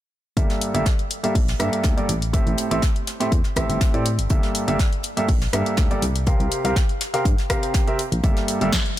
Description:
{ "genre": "piano house", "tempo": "122 BPM", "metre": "4/4", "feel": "swing 53% on 16ths", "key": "G dorian", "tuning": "A4 = 440 Hz", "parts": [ { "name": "clear concert grand piano", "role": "riff", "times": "0.4-8.7 s", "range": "G2 to F5", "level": "-24 LUFS", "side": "right 1 dB", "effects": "sidechain pumping, low-pass filter, tape echo" }, { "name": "solid FM bass", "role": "bass", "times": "0.4-8.7 s", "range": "G1 to A2", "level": "-24 LUFS", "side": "equal", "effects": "sidechain pumping" }, { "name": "electronic kick drum", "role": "drums", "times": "0.4-8.8 s", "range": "none", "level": "-21 LUFS", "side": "equal", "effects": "none" }, { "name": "house drum kit", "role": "drums", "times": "0.4-9.0 s", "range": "hi-hat, rim click, snare drum", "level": "-28 LUFS", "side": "left 2 dB", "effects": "none" }, { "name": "soft brush drum kit", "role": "drums", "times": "0.4-8.9 s", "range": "hi-hat, snare drum", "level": "-33 LUFS", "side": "right 2 dB", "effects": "sidechain pumping on hats, high-pass filter on hats, high-pass filter on snare, high-pass filter on room" } ], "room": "small room ambience", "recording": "none", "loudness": "-19 LUFS", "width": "side -13 dB against mid", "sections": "0.4-9.0 A section", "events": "none", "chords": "0.4 Gm69; 2.3 Am7; 4.1 Gm69; 6.3 C7sus4; 8.2 Gm69" }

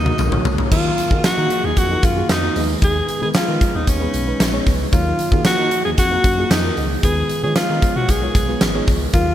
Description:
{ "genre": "1980s-style pop", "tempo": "114 BPM", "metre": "4/4", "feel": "straight", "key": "Eb minor", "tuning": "A4 = 440 Hz", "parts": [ { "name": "bright alto saxophone", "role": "melody", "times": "0.0-9.3 s", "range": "Db4 to Ab4", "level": "-21 LUFS", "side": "equal", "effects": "none" }, { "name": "FM electric piano with soft pad layer", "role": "accompaniment", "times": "0.0-9.3 s", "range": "Eb3 to Db5", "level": "-24 LUFS", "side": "equal", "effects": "chorus" }, { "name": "phased analog pad", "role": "sustained chords", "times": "0.0-0.7, 9.1-9.3 s", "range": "Eb3 to Bb4", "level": "-36 LUFS", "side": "right 2 dB", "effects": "none" }, { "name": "smooth gliding synth bass", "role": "bass", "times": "0.0-9.3 s", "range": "Ab1 to Eb3", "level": "-23 LUFS", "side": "equal", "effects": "none" }, { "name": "huge arena drum kit", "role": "drums", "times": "0.1-9.3 s", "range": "crash cymbal, hi-hat, kick drum, snare drum, tambourine, toms", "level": "-18 LUFS", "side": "equal", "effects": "none" }, { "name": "tambourine", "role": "percussion", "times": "0.2-9.3 s", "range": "none", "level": "-40 LUFS", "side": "left 5 dB", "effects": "none" } ], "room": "light reverb, studio ambience", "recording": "bright 1980s-style digital production", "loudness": "-15 LUFS", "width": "side -11 dB against mid", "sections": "0.7-9.3 A section", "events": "drum fill 0.0-0.7", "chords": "0.0 Ebm; 0.7 Ebmadd9; 2.6 Abm/Eb; 4.9 Ebmadd9; 7.0 Fdim/Eb" }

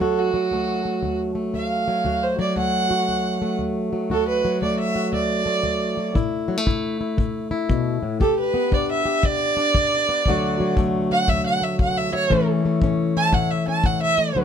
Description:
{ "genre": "acoustic country blues, solo or duo", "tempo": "117 BPM", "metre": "4/4", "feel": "swing 65% on 8ths", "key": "D major", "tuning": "A4 = 439 Hz", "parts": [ { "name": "dark fiddle", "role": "melody", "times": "0.0-14.3 s", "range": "F#4 to A5", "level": "-22 LUFS", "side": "right 4 dB", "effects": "none" }, { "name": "fingerpicked plugged-in swing-style acoustic guitar", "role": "accompaniment", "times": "0.0-14.4 s", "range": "D2 to G4", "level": "-22 LUFS", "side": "left 2 dB", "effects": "none" }, { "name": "kick drum", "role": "drums", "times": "6.2-14.0 s", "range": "none", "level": "-24 LUFS", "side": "left 1 dB", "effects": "none" } ], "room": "little or no reverb", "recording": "close, detailed microphones", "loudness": "-19 LUFS", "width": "side -8 dB against mid", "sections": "0.0-14.3 A section", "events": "fiddle solo 0.0-14.4", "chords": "0.0 D; 6.2 A5; 8.2 G; 10.3 D; 12.3 A" }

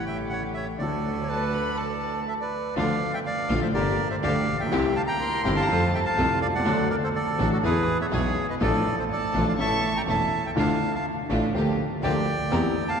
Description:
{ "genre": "tango", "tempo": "123 BPM", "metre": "4/4", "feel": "rubato", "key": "D minor", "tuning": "A4 = 441 Hz", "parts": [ { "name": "bandoneon", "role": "melody", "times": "0.0-13.0 s", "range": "F#4 to Bb5", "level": "-27 LUFS", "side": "right 2 dB", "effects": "none" }, { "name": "dark upright piano", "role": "accompaniment", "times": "0.0-12.7 s", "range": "E1 to A4", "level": "-27 LUFS", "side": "left 2 dB", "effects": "none" }, { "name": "rich chamber string section", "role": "stabs", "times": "0.0-12.7 s", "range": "A3 to Bb4", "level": "-34 LUFS", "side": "right 1 dB", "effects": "none" }, { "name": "clear double bass", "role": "bass", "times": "0.0-12.7 s", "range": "E1 to F2", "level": "-28 LUFS", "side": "equal", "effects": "none" }, { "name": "breathy silver concert flute", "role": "second line", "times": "1.2-6.1 s", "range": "A4 to C#5", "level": "-36 LUFS", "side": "right 1 dB", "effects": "none" }, { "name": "warm violin", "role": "second line", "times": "1.3-6.1, 9.1-9.9 s", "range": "A5 to C#6", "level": "-36 LUFS", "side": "left 2 dB", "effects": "none" } ], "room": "wet cathedral reverb, RT60 4.8 s", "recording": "recorded in a church or concert hall, nothing above 10.6 kHz", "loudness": "-22 LUFS", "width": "side -6 dB against mid", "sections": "0.0-2.8 A section; 2.8-13.0 B section", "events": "none", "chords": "0.0 A7; 0.8 D; 2.8 Dm; 3.7 Gm; 4.7 C; 5.7 F; 6.7 D; 7.6 E; 8.6 Dm/A; 9.6 A; 10.6 Dmadd9; 11.5 Gm7/D" }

